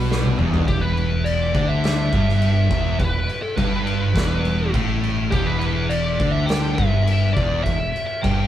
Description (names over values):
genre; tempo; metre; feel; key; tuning
stoner and doom metal; 103 BPM; 4/4; straight; E minor; A4 = 440 Hz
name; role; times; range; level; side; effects
overdriven electric guitar; riff; 0.0-0.7 s; E2 to B2; -27 LUFS; left 1 dB; none
thick fuzz guitar; riff; 0.0-8.5 s; E2 to D3; -25 LUFS; left 5 dB; distortion
thick fuzz guitar; riff; 0.0-8.5 s; E2 to D3; -24 LUFS; right 4 dB; distortion
modern bright picked electric bass; bass; 0.0-8.5 s; E1 to D2; -24 LUFS; equal; overdrive
oversized low-tuned drum kit; drums; 0.1-8.4 s; crash cymbal, kick drum, snare drum, toms; -24 LUFS; equal; none
fuzz lead guitar; melody; 0.7-8.5 s; G4 to G5; -26 LUFS; left 1 dB; wah, distortion
room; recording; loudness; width
moderate stone room reverb, RT60 1.2 s; band playing live in one room; -18 LUFS; side -11 dB against mid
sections
0.7-8.5 A section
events
drum fill 0.1-0.7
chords
0.0 E5; 0.7 Em